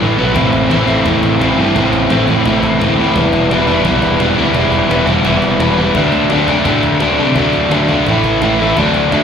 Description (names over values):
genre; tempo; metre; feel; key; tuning
garage rock duo or trio; 171 BPM; 4/4; straight; unclear; A4 = 440 Hz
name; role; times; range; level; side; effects
crunchy overdriven guitar; riff; 0.0-9.2 s; A2 to E4; -11 LUFS; equal; none
growling picked electric bass; bass; 0.0-9.2 s; E1 to C3; -19 LUFS; equal; overdrive
cajon; drums; 0.4-9.2 s; none; -24 LUFS; equal; none
room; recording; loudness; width
light reverb; live gig heard through the venue's PA, club reverb; -10 LUFS; side -7 dB against mid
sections
0.3-9.2 A section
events
break 0.0-0.3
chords
0.0 E5; 0.3 Am; 3.2 Em; 6.0 D; 8.1 A5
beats
0.00 | 0.35 0.70 1.05 1.40 | 1.75 2.10 2.46 2.81 | 3.16 3.51 3.86 4.21 | 4.56 4.91 5.26 5.61 | 5.96 6.31 6.67 7.02 | 7.37 7.72 8.07 8.42 | 8.77 9.12